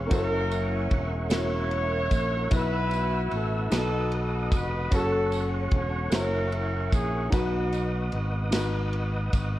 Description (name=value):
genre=slow gospel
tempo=50 BPM (dotted quarters)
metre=6/8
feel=straight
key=unclear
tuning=A4 = 435 Hz
part: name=warm concert grand piano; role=accompaniment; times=0.0-9.6 s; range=B2 to C#5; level=-32 LUFS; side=left 1 dB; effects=none
part: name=tonewheel organ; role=sustained chords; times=0.0-9.6 s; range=G#4 to E6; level=-36 LUFS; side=right 1 dB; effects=slow rotary speaker, chorus vibrato
part: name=fingered electric bass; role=bass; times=0.0-9.6 s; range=E1 to B1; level=-29 LUFS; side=equal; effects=none
part: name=warm horn section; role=melody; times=0.1-8.5 s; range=B3 to C#5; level=-30 LUFS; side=equal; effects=none
part: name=modern studio drum kit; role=drums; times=0.1-9.5 s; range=kick drum, ride cymbal, snare drum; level=-28 LUFS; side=equal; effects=none
part: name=tambourine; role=percussion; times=0.1-9.6 s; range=none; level=-45 LUFS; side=right 7 dB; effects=none
room=light reverb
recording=worn, warbling old tape, cassette tape, warbly pitch drift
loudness=-24 LUFS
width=side -15 dB against mid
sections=0.0-9.6 A section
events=none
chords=0.1 F#7; 2.5 Bsus4; 3.7 B; 4.9 F#m; 6.1 F#7; 7.3 B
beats=| 0.11 1.32 | 2.52 3.72 | 4.92 6.13 | 7.33 8.53